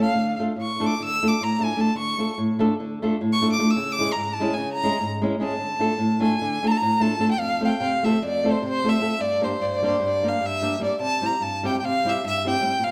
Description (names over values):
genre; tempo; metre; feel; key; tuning
balkan folk; 300 BPM (eighths); 9/8; straight; D hungarian minor, F major from 7.4 s; A4 = 440 Hz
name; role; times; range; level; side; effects
clear violin; melody; 0.0-12.9 s; C5 to E6; -26 LUFS; equal; none
flamenco guitar; accompaniment; 0.0-12.9 s; F2 to A4; -26 LUFS; equal; none
room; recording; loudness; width
moderate recital hall reverb, RT60 1.7 s; none; -23 LUFS; mono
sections
0.0-7.4 A section; 7.4-12.9 B section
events
violin solo 0.0-7.4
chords
0.2 Dm; 3.8 C#m; 5.6 Dm; 7.4 F; 9.2 Gm; 11.0 C